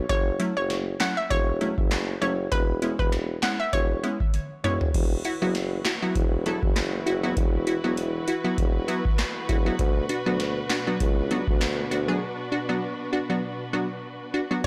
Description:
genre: dancehall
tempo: 99 BPM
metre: 4/4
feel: swing 56% on 16ths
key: unclear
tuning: A4 = 439 Hz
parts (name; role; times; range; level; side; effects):
- warm tuba; bass; 0.0-14.7 s; E1 to D2; -31 LUFS; equal; none
- hollow square pluck; melody; 0.1-4.8, 14.6-14.7 s; B4 to F#5; -31 LUFS; equal; chorus, tape echo
- booming analog drum machine; drums; 0.1-14.7 s; crash cymbal, handclaps, hi-hat, kick drum, rim click, snare drum, toms; -28 LUFS; equal; none
- wavetable chord stab; accompaniment; 0.4-14.6 s; F#3 to A4; -30 LUFS; equal; none
- warm studio string section; sustained chords; 4.9-14.7 s; B2 to B4; -36 LUFS; equal; sidechain pumping
room: light reverb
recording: blown-out, overdriven recording, overdrive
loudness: -26 LUFS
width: mono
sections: 0.0-4.9 A section; 4.9-14.6 B section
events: drum fill 4.3-4.9; break 12.2-14.6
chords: 0.1 F#m7; 2.5 E6; 4.9 Esus2; 9.8 Bm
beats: | 0.10 0.70 1.31 1.91 | 2.52 3.13 3.73 4.34 | 4.95 5.55 6.16 6.76 | 7.37 7.97 8.58 9.19 | 9.79 10.40 11.01 11.61 | 12.22 12.82 13.43 14.04 | 14.64

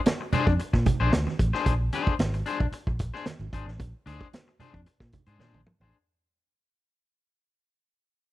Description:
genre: funk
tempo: 112 BPM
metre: 4/4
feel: straight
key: Bb mixolydian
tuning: A4 = 441 Hz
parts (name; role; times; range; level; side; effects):
- vintage drum kit; drums; 0.1-5.9 s; hi-hat, kick drum, snare drum, toms; -27 LUFS; equal; none
- congas; percussion; 0.1-5.7 s; none; -32 LUFS; right 6 dB; none
- electric guitar at the edge of break-up; accompaniment; 0.2-6.0 s; D4 to C5; -30 LUFS; left 7 dB; none
- vintage muted fingered electric bass; bass; 0.3-5.9 s; Ab1 to Bb2; -28 LUFS; equal; none
room: small room ambience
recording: dry, close 1970s-style studio recording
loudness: -24 LUFS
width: side -16 dB against mid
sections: 0.0-5.9 A section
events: fade-out 0.0-5.9; drum fill 5.4-5.9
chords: 0.0 Bb9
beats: 0.06 0.59 1.12 | 1.66 2.19 2.73 3.26 | 3.80 4.33 4.87 5.40

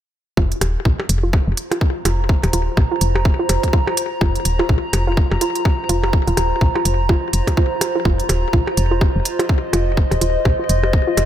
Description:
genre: minimal techno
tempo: 125 BPM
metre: 4/4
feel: swing 59% on 16ths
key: unclear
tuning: A4 = 440 Hz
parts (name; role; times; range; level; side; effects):
- resonant blip pluck; riff; 0.4-11.1 s; F4; -25 LUFS; right 2 dB; chorus, sidechain pumping, ping-pong delay
- woody FM bass; bass; 0.4-11.3 s; Eb1 to Bb1; -19 LUFS; equal; sidechain pumping
- electronic kick drum; drums; 0.4-11.0 s; none; -17 LUFS; equal; none
- warbly tape-like pad; texture; 1.6-11.3 s; F4 to Bb5; -23 LUFS; right 1 dB; chorus, built-in reverb, phaser, sidechain pumping
- electronic hi-hat; drums; 0.5-11.3 s; none; -24 LUFS; right 3 dB; none
- percussion blips; percussion; 0.6-11.3 s; none; -27 LUFS; left 1 dB; overdrive, ping-pong delay
room: light reverb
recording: none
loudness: -15 LUFS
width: side -11 dB against mid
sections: 0.4-11.3 A section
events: none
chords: 0.4 Fsus4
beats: | 0.37 0.85 1.33 1.81 | 2.29 2.77 3.25 3.73 | 4.21 4.69 5.17 5.65 | 6.13 6.61 7.09 7.57 | 8.05 8.53 9.01 9.49 | 9.97 10.45 10.93

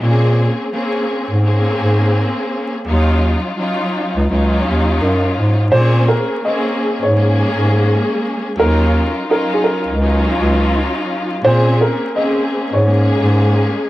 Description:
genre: hip hop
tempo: 84 BPM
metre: 4/4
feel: swing 61% on 16ths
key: Bb minor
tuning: A4 = 442 Hz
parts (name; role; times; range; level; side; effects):
- warm studio string section; accompaniment; 0.0-13.9 s; Gb3 to Ab4; -18 LUFS; left 1 dB; high-pass filter, low-pass filter
- breathy bass clarinet; bass; 0.0-13.7 s; Db2 to Bb2; -14 LUFS; equal; none
- dark upright piano; melody; 5.7-13.9 s; Ab4 to Eb5; -18 LUFS; right 1 dB; high-pass filter, low-pass filter
room: small room ambience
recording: dry, gritty hardware recording, vinyl crackle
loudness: -13 LUFS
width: side -16 dB against mid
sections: 0.0-5.7 A section; 5.7-13.9 B section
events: none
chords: 0.0 Bbm9; 2.9 Ebm9; 5.7 Bbm9; 8.6 Ebm9; 11.4 Bbm9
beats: | 0.02 0.73 1.44 2.16 | 2.87 3.59 4.30 5.02 | 5.73 6.44 7.16 7.87 | 8.59 9.30 10.02 10.73 | 11.44 12.16 12.87 13.59

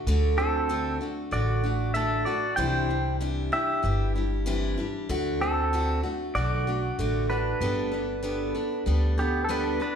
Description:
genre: honky-tonk and classic country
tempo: 96 BPM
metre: 4/4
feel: straight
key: unclear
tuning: A4 = 440 Hz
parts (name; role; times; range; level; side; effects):
- picked steel-string acoustic guitar; accompaniment; 0.0-10.0 s; C3 to A4; -29 LUFS; left 1 dB; none
- upright bass; bass; 0.1-9.8 s; G1 to D2; -28 LUFS; equal; none
- pedal steel guitar; melody; 0.4-10.0 s; B3 to G5; -28 LUFS; right 1 dB; none
room: wet large studio reverb, RT60 1.1 s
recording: band playing live in one room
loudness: -24 LUFS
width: side -7 dB against mid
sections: 0.0-10.0 A section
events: none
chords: 0.0 D; 2.6 Cadd9; 5.1 D; 7.6 Gadd9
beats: | 0.07 0.70 1.33 1.95 | 2.58 3.21 3.84 4.47 | 5.10 5.72 6.35 6.98 | 7.61 8.24 8.87 9.50

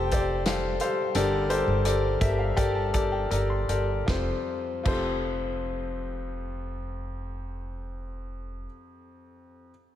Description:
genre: piano-driven pop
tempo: 77-89 BPM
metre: 4/4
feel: straight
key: F major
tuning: A4 = 438 Hz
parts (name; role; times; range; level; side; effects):
- clear concert grand piano; accompaniment; 0.0-9.7 s; F2 to C6; -28 LUFS; left 2 dB; none
- upright bass; bass; 0.0-8.7 s; F1 to G1; -31 LUFS; equal; none
- loose indie drum kit; drums; 0.1-5.1 s; crash cymbal, hi-hat, kick drum, snare drum; -31 LUFS; equal; none
room: moderate church reverb, RT60 3.3 s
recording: dreamy mix soaked in reverb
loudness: -25 LUFS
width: side -11 dB against mid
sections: 0.0-4.1 A section; 4.1-7.2 B section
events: slowing down 0.0-4.1; grand piano fill 1.9-4.1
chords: 0.0 Fadd9; 1.1 Gmadd9; 4.1 Fadd9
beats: 0.46 | 1.15 1.85 2.57 3.31 | 4.08 4.86 5.64 6.41

